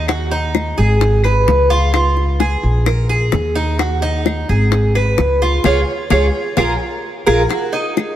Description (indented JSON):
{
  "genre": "latin, Cuban son and guajira",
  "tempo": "129 BPM",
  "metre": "4/4",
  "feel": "straight",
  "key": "Eb minor",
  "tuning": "A4 = 440 Hz",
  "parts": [
    { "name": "Cuban tres", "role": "arpeggios", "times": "0.0-8.2 s", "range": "Eb4 to Db5", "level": "-17 LUFS", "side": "right 1 dB", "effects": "none" },
    { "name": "upright bass", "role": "bass", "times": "0.0-7.4 s", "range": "Ab1 to Eb2", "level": "-16 LUFS", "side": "equal", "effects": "none" },
    { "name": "bongos", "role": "percussion", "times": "0.1-8.2 s", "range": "none", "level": "-22 LUFS", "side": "left 5 dB", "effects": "none" },
    { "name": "claves", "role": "percussion", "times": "0.1-8.2 s", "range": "none", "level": "-28 LUFS", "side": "left 6 dB", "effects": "none" }
  ],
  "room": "moderate plate reverb, RT60 3.6 s",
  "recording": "heard from further back in the room",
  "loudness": "-13 LUFS",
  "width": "side -11 dB against mid",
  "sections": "0.0-7.5 A section",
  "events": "band accent 5.6-7.5; drum fill 6.6-7.5",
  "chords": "0.1 Ebm; 1.0 Abm; 1.9 Db; 2.9 Bb7sus4; 3.8 Ebm; 4.7 Abm; 5.6 Db; 6.6 Bb5; 7.5 Ebm"
}